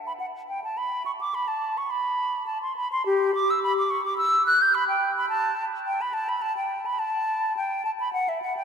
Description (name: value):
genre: classical, baroque-style fantasia for unaccompanied flute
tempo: 106 BPM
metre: 3/4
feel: rubato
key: B minor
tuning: A4 = 440 Hz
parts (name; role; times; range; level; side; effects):
- hollow concert flute; solo; 0.1-8.6 s; G4 to G6; -23 LUFS; equal; none
room: wet cathedral reverb, RT60 5.5 s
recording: in a vast, echoing space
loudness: -23 LUFS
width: side -6 dB against mid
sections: 0.0-8.6 A section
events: none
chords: none